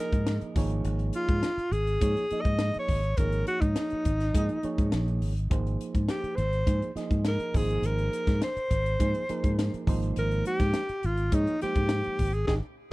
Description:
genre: electric jazz fusion.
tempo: 103 BPM.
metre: 4/4.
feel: straight.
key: Ab major.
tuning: A4 = 439 Hz.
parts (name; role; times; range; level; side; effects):
breathy alto saxophone; melody; 0.0-12.5 s; Eb4 to Eb5; -30 LUFS; equal; none.
overdriven reed electric piano; accompaniment; 0.0-12.6 s; F3 to Eb5; -34 LUFS; right 4 dB; none.
fingered electric bass; bass; 0.1-12.6 s; Ab1 to Ab2; -28 LUFS; equal; none.
crisp fusion drum kit; drums; 0.1-12.6 s; hi-hat, kick drum, snare drum; -29 LUFS; equal; none.
room: little or no reverb.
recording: none.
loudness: -25 LUFS.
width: side -20 dB against mid.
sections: 0.0-12.9 A section.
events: band accent 12.5-12.9.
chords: 0.0 Absus2; 0.6 Absus4; 5.5 Ab69; 9.9 Dbmaj9/Ab (rootless).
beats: 0.27 | 0.85 1.43 2.01 2.60 | 3.18 3.76 4.34 4.93 | 5.51 6.09 6.67 7.25 | 7.84 8.42 9.00 9.58 | 10.16 10.74 11.32 11.90 | 12.48.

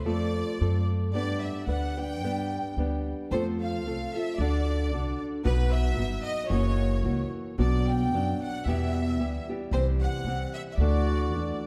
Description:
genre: mexican folk, mariachi.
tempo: 112 BPM.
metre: 2/4.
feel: swing 55% on 8ths, rubato.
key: G major.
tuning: A4 = 439 Hz.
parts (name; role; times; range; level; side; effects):
bright studio violin section; melody; 0.0-11.6 s; B4 to G5; -37 LUFS; equal; none.
nylon-string guitar; accompaniment; 0.0-11.7 s; E2 to B4; -33 LUFS; equal; none.
upright bass; bass; 0.0-11.5 s; F#1 to G2; -30 LUFS; equal; none.
warm trumpet; second line; 10.8-11.6 s; F#4; -37 LUFS; equal; none.
room: moderate concert hall reverb, RT60 2.3 s.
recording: dark, warm production.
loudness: -28 LUFS.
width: mono.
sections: 0.0-3.3 A section; 3.3-11.7 B section.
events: none.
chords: 0.0 F; 1.1 G; 3.3 F; 4.4 D; 5.5 B; 6.5 F#7; 7.6 Bm; 8.7 Em; 9.7 C; 10.8 Dadd9.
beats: | 0.07 0.60 | 1.14 1.67 | 2.21 2.76 | 3.31 3.85 | 4.39 4.92 | 5.45 5.98 | 6.51 7.04 | 7.58 8.13 | 8.66 9.19 | 9.71 10.24 | 10.78 11.31.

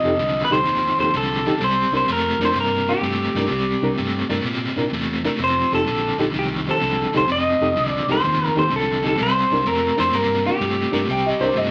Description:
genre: electric blues shuffle.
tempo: 127 BPM.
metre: 4/4.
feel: swing 67% on 8ths.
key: unclear.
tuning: A4 = 440 Hz.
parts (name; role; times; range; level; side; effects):
electric guitar through a small old amp; melody; 0.0-11.7 s; G4 to Eb5; -23 LUFS; equal; none.
reed electric piano; accompaniment; 0.0-11.5 s; D4 to C5; -28 LUFS; equal; fast tremolo.
crunchy overdriven guitar; riff; 0.0-11.7 s; F2 to Bb3; -26 LUFS; equal; tremolo.
fingered electric bass; bass; 0.0-11.7 s; F1 to Bb2; -31 LUFS; equal; none.
clear upright piano; second line; 11.1-11.7 s; C5 to G5; -22 LUFS; equal; none.
room: moderate studio reverb, RT60 0.8 s.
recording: none.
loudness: -20 LUFS.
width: mono.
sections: 0.0-11.7 A section.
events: none.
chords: 0.0 F9; 1.6 C9; 5.4 F9; 9.2 C9.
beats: 0.20 0.67 1.14 | 1.62 2.09 2.56 3.04 | 3.51 3.98 4.46 4.93 | 5.40 5.87 6.35 6.82 | 7.29 7.77 8.24 8.72 | 9.19 9.66 10.14 10.61 | 11.09 11.56.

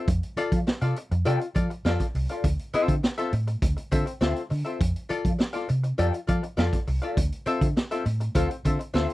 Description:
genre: funk.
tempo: 102 BPM.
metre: 4/4.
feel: straight.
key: D minor.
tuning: A4 = 440 Hz.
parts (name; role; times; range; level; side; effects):
archtop guitar, miked and amplified; accompaniment; 0.0-9.1 s; C4 to G5; -28 LUFS; left 3 dB; wah.
vintage muted fingered electric bass; bass; 0.1-9.1 s; C2 to F3; -26 LUFS; equal; none.
raw garage drum kit; drums; 0.1-9.1 s; hi-hat, kick drum, snare drum; -27 LUFS; equal; none.
room: little or no reverb.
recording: dry, close 1970s-style studio recording.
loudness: -23 LUFS.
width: side -17 dB against mid.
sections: 0.0-9.1 A section.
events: none.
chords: 0.1 F6; 2.4 Dm9; 4.8 F6; 7.2 Dm9.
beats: | 0.08 0.67 1.26 1.85 | 2.44 3.03 3.62 4.21 | 4.80 5.39 5.99 6.58 | 7.17 7.76 8.35 8.95.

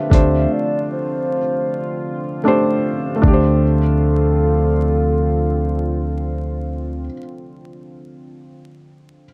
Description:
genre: lo-fi hip hop.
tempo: 77 BPM.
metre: 4/4.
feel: swing 62% on 16ths.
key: D minor.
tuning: A4 = 440 Hz.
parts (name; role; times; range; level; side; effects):
hollow clarinet-like synth lead; melody; 0.0-7.1 s; A4 to E5; -26 LUFS; equal; chorus, low-pass filter.
felt-muted upright piano; accompaniment; 0.0-9.3 s; A3 to C5; -23 LUFS; equal; cassette tape, low-pass filter.
deep dark ambient pad; sustained chords; 0.0-7.1 s; D3 to F4; -29 LUFS; equal; chorus, built-in reverb, low-pass filter.
fingered electric bass; bass; 0.1-7.1 s; D2; -20 LUFS; equal; none.
lo-fi sampler-style drum kit; drums; 0.1-3.5 s; hi-hat, kick drum; -15 LUFS; equal; overdrive.
room: light reverb.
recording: vinyl crackle.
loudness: -18 LUFS.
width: mono.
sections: 0.0-3.6 A section; 3.6-6.7 B section.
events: break 0.5-3.6.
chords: 0.0 Dm7.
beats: | 0.51 1.28 2.06 2.84 | 3.62 4.40 5.18 5.96.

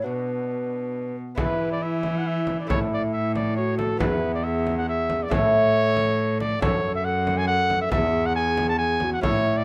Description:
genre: classical, renaissance-style consort dance.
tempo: 138 BPM.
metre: 3/4.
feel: straight.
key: unclear.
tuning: A4 = 440 Hz.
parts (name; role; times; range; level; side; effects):
mellow cornet; melody; 0.0-9.6 s; D4 to A5; -28 LUFS; equal; none.
mellow hollow tenor recorder; second line; 0.0-9.6 s; E4 to B4; -32 LUFS; equal; none.
lute; accompaniment; 0.0-9.6 s; E2 to A4; -30 LUFS; equal; none.
rich cello; bass; 0.0-9.6 s; E2 to E3; -29 LUFS; equal; none.
frame drum; percussion; 1.4-9.4 s; none; -32 LUFS; equal; none.
room: moderate studio reverb, RT60 0.7 s.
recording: none.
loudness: -24 LUFS.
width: mono.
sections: 0.0-1.4 A section; 1.4-9.6 A section.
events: none.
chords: 0.1 Bm; 1.4 E; 2.7 A5; 4.0 E; 5.3 A; 6.6 F#m; 7.9 E.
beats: | 0.06 0.50 0.94 | 1.39 1.83 2.26 | 2.70 3.14 3.57 | 4.00 4.44 4.88 | 5.31 5.74 6.18 | 6.61 7.05 7.48 | 7.92 8.36 8.79 | 9.23.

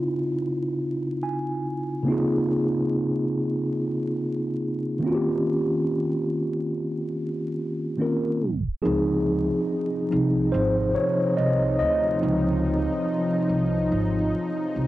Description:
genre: hip hop.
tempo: 71 BPM.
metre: 4/4.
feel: swing 57% on 16ths.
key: Db lydian.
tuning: A4 = 440 Hz.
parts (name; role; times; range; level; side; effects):
mellow tine electric piano; accompaniment; 0.0-14.9 s; Db3 to Ab5; -23 LUFS; equal; medium stereo tremolo, cassette tape.
lush unison pad; sustained chords; 8.8-14.9 s; C3 to Eb4; -30 LUFS; equal; chorus, cassette tape.
upright bass; bass; 8.9-14.9 s; Ab1 to D2; -26 LUFS; equal; transformer saturation.
room: moderate studio reverb, RT60 0.6 s.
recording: home recording on cassette, vinyl crackle, tape stop.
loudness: -22 LUFS.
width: side -16 dB against mid.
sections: 0.0-8.8 A section; 8.8-14.9 B section.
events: tape stop 8.4-8.8; tine electric piano solo 8.8-14.9.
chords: 0.0 Dbmaj9; 2.1 Bbm11/Db; 5.0 Eb13; 8.8 Dbmaj9.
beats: 0.38 1.23 | 2.07 2.92 3.76 4.61 | 5.46 6.30 7.14 7.99 | 8.84 9.68 10.53 11.37 | 12.21 13.06 13.90 14.75.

